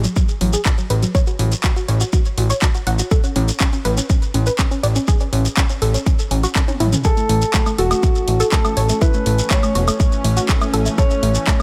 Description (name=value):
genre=progressive house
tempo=122 BPM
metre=4/4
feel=straight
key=unclear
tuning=A4 = 440 Hz
part: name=unison pluck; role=arpeggios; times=0.0-11.6 s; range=F#3 to F#5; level=-26 LUFS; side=equal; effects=sidechain pumping, digital delay
part: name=fat analog bass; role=bass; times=0.0-11.4 s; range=E1 to A1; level=-20 LUFS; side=equal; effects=sidechain pumping
part: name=house drum kit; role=drums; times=0.0-11.6 s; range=handclaps, hi-hat, toms, woodblock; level=-27 LUFS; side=equal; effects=overdrive, studio ambience
part: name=shekere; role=percussion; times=0.0-11.6 s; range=none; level=-31 LUFS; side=equal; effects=none
part: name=electronic kick drum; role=drums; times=0.2-11.6 s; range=none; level=-19 LUFS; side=equal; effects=studio ambience
part: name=dark baby grand piano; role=melody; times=7.0-11.6 s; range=F#4 to C#5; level=-24 LUFS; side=equal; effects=sidechain pumping, delay
part: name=evolving wavetable pad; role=sustained chords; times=8.0-11.6 s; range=E3 to C#4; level=-30 LUFS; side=equal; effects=phaser, built-in reverb, sidechain pumping
room=digital ambience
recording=faint mains hum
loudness=-17 LUFS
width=mono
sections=0.0-11.6 A section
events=drum fill 6.6-7.0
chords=0.0 F#m/A; 7.0 A